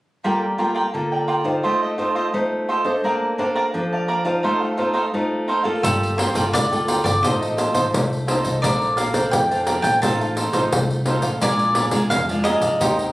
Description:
samba and choro; 86 BPM; 4/4; straight; G minor; A4 = 440 Hz
cavaquinho; accompaniment; 0.2-13.1 s; Eb4 to A5; -23 LUFS; right 2 dB
nylon-string guitar; accompaniment; 0.2-13.1 s; Bb2 to C5; -23 LUFS; equal
cavaquinho; melody; 5.8-13.1 s; A4 to A5; -22 LUFS; equal
upright bass; bass; 5.8-13.1 s; G1 to F2; -27 LUFS; equal
pandeiro; percussion; 5.8-13.1 s; -23 LUFS; equal
moderate studio reverb, RT60 0.8 s; recorded on a phone in the room, studio reverb; -18 LUFS; side -17 dB against mid
0.2-5.8 A section; 5.8-13.1 B section
0.2 Gm9; 1.6 F7/A; 3.0 Bbmaj9; 4.4 F7/A; 5.8 Gm9; 7.2 F7/A; 8.6 Bbmaj9; 10.0 F7/A; 11.4 Bb7

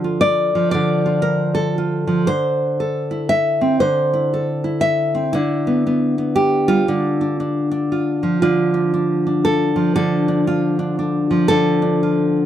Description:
folk, solo fingerstyle acoustic guitar; 117 BPM; 3/4; swing 62% on 8ths; D minor; A4 = 440 Hz
nylon-string guitar; solo; 0.0-12.5 s; D3 to E5; -16 LUFS; equal
little or no reverb; dry, close 1970s-style studio recording; -16 LUFS; side -11 dB against mid
0.0-8.4 A section; 8.4-12.5 A section
0.0 Dm; 2.3 Am/D; 5.3 G6/D; 6.9 Dm

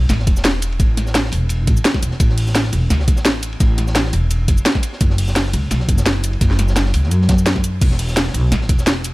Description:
liquid drum and bass; 171 BPM; 4/4; swing 54% on 16ths; A4 = 439 Hz
upright bass; bass; 0.0-9.1 s; E1 to F#2; -17 LUFS; equal
crunchy breakbeat drum kit; drums; 0.1-9.1 s; hi-hat, ride cymbal, snare drum; -28 LUFS; equal; high-pass filter on cymbals, high-pass filter on hats, high-pass filter on snare, high-pass filter on room
drum and bass drum kit; drums; 0.1-9.1 s; crash cymbal, hi-hat, shaker, snare drum; -20 LUFS; equal; overdrive
electronic kick drum; drums; 0.3-8.8 s; -16 LUFS; equal; overdrive
little or no reverb; -14 LUFS; side -20 dB against mid
0.0-9.1 A section

